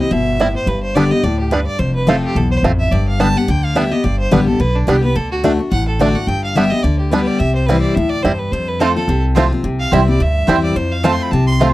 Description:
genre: bluegrass.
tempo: 214 BPM.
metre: 4/4.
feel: swing 56% on 8ths.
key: C major.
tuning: A4 = 440 Hz.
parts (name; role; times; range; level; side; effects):
clear fiddle; melody; 0.0-11.5 s; D4 to C6; -22 LUFS; right 2 dB; none.
picked steel-string acoustic guitar; accompaniment; 0.0-11.7 s; E2 to G4; -17 LUFS; left 2 dB; none.
upright bass; bass; 0.1-11.7 s; F1 to F2; -18 LUFS; equal; none.
bluegrass banjo; arpeggios; 0.4-11.7 s; G3 to F4; -16 LUFS; right 3 dB; none.
mandolin; stabs; 8.8-11.7 s; C4 to A5; -19 LUFS; right 7 dB; none.
room: little or no reverb.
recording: dry, close 1970s-style studio recording.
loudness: -13 LUFS.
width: side -16 dB against mid.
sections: 0.0-11.7 A section.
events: none.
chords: 0.0 C; 0.7 G; 1.8 F; 2.9 G; 5.2 D; 6.3 G; 7.4 C; 8.5 F; 9.6 C; 10.8 F.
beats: 0.12 0.40 | 0.68 0.96 1.24 1.52 | 1.80 2.08 2.36 2.64 | 2.92 3.20 3.48 3.76 | 4.04 4.32 4.60 4.88 | 5.16 5.44 5.72 6.00 | 6.28 6.56 6.84 7.12 | 7.40 7.68 7.96 8.24 | 8.52 8.80 9.08 9.36 | 9.64 9.92 10.20 10.48 | 10.76 11.04 11.32 11.60.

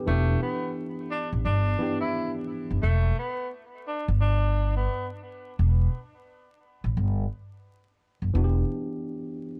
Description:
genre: hip hop, boom-bap hip-hop.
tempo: 87 BPM.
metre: 4/4.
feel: swing 63% on 16ths.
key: E minor.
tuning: A4 = 444 Hz.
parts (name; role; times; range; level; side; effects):
tine electric piano; accompaniment; 0.0-2.9, 8.3-9.6 s; E3 to G4; -33 LUFS; equal; cassette tape, high-pass filter, low-pass filter.
breathy tenor saxophone; melody; 0.1-5.1 s; A3 to E4; -34 LUFS; equal; high-pass filter, low-pass filter, tape echo.
upright bass; bass; 0.1-8.6 s; E1 to A1; -26 LUFS; equal; none.
room: light reverb.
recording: dark, warm production, vinyl crackle.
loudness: -27 LUFS.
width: mono.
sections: 0.0-9.6 A section.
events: none.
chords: 0.0 Em7; 2.8 Em; 8.3 Em7.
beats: | 0.07 0.76 1.45 2.14 | 2.83 3.52 4.21 4.90 | 5.59 6.28 6.97 7.66 | 8.35 9.04.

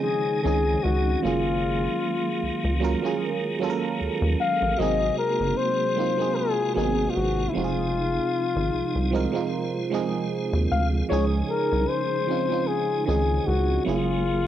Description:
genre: R&B, neo-soul.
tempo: 76 BPM.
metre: 4/4.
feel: swing 54% on 16ths.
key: Db major.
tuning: A4 = 440 Hz.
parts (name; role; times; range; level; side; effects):
breathy flugelhorn; melody; 0.0-14.5 s; Fb4 to F5; -26 LUFS; left 5 dB; cassette tape.
FM electric piano; accompaniment; 0.0-14.5 s; Eb3 to Bb4; -27 LUFS; right 7 dB; chorus, cassette tape.
tonewheel organ; sustained chords; 0.0-14.5 s; C3 to Gb4; -31 LUFS; right 1 dB; fast rotary speaker, overdrive, chorus vibrato, cassette tape.
rubbery square bass; bass; 0.5-14.5 s; F1 to Eb2; -26 LUFS; equal; none.
room: light reverb.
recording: home recording on cassette.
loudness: -22 LUFS.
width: side -11 dB against mid.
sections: 0.0-14.5 A section.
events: none.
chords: 0.0 Dbmaj9; 1.2 Gbmaj9; 4.8 Ab9; 7.5 Fm7; 11.1 Dbmaj9; 13.9 Gbmaj9.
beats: 0.04 0.83 | 1.62 2.41 3.20 3.99 | 4.78 5.57 6.36 7.14 | 7.93 8.72 9.51 10.30 | 11.09 11.88 12.67 13.46 | 14.25.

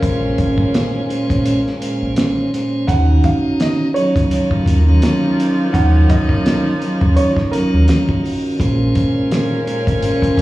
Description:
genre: hip hop, boom-bap hip-hop.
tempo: 84 BPM.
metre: 4/4.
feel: swing 56% on 16ths.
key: Eb minor.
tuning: A4 = 440 Hz.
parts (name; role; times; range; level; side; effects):
tonewheel organ; accompaniment; 0.0-10.4 s; Bb2 to C5; -18 LUFS; right 1 dB; overdrive, stopped rotary speaker, cassette tape.
warm studio string section; sustained chords; 0.0-10.4 s; Db3 to Eb4; -27 LUFS; left 1 dB; none.
warm saxophone section; stabs; 0.0-10.4 s; F3 to Bb4; -25 LUFS; left 1 dB; digital delay.
deep dub fingered electric bass; bass; 0.0-10.4 s; Ab1 to Eb2; -15 LUFS; equal; none.
cloth-damped thuddy drum kit; drums; 0.0-10.4 s; hi-hat, kick drum, snare drum; -19 LUFS; equal; none.
warm upright piano; melody; 2.9-8.6 s; Bb4 to Gb5; -23 LUFS; right 3 dB; digital delay.
room: moderate studio reverb, RT60 0.6 s.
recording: played on a big sound system in a bare room, stone room reverb, small room ambience.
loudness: -13 LUFS.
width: side -16 dB against mid.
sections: 0.0-10.4 A section.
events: kick muted 1.5-2.9.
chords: 0.0 Bbm9; 2.9 Ebm9; 8.6 Bbm9.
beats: | 0.03 0.74 1.46 2.17 | 2.88 3.60 4.31 5.03 | 5.74 6.46 7.17 7.88 | 8.60 9.31 10.03.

